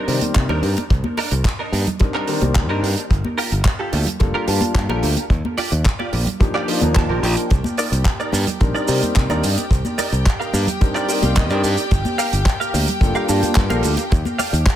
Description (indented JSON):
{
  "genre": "nu-disco, nu disco",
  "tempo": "109 BPM",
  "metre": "4/4",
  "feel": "straight",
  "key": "C dorian",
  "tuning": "A4 = 440 Hz",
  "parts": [
    { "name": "warm concert grand piano", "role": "accompaniment", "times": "0.0-13.9 s", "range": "Eb3 to A5", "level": "-25 LUFS", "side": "left 1 dB", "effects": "dub echo" },
    { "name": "direct-recorded clean electric guitar", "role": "riff", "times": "0.0-14.7 s", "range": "D4 to A5", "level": "-26 LUFS", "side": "right 2 dB", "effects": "ensemble chorus, dub echo" },
    { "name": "modern bright fingered electric bass", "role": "bass", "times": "0.1-14.6 s", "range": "F1 to C3", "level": "-20 LUFS", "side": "equal", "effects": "tube saturation, sidechain pumping" },
    { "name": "damped 70s drum kit", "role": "drums", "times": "0.1-14.8 s", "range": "handclaps, hi-hat, shaker", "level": "-26 LUFS", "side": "right 2 dB", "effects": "studio reverb, dub echo" },
    { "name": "congas", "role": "percussion", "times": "0.2-14.5 s", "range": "none", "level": "-28 LUFS", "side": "equal", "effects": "dub echo" },
    { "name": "kick drum", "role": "drums", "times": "0.4-14.8 s", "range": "none", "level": "-17 LUFS", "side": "equal", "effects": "studio reverb" },
    { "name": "rich chamber string section", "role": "sustained chords", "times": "7.5-14.8 s", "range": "G4 to G5", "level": "-27 LUFS", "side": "left 1 dB", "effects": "sidechain pumping" }
  ],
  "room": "light reverb, small room ambience",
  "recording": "echo-heavy mix",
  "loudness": "-16 LUFS",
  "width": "side -11 dB against mid",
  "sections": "0.0-14.8 A section",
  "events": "clean electric guitar fill 6.7-7.5, 10.8-11.9",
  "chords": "0.0 Cm9; 3.1 Gm7; 5.3 Ebmaj9; 7.5 Cm9; 11.9 Gm7; 14.1 Ebmaj9"
}